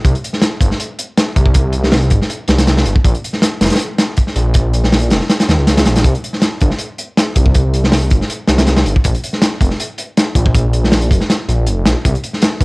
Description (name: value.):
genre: drum and bass, jungle.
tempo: 160 BPM.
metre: 4/4.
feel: swing 54% on 16ths.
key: unclear.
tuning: A4 = 440 Hz.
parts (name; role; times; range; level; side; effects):
detuned saw bass; bass; 0.0-12.6 s; F1 to Eb2; -14 LUFS; equal; none.
crunchy breakbeat drum kit; drums; 0.0-12.6 s; hi-hat, kick drum, snare drum; -13 LUFS; equal; none.
room: little or no reverb.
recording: dry, gritty hardware recording, cassette tape.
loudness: -12 LUFS.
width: side -29 dB against mid.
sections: 0.0-12.6 A section.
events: none.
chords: none.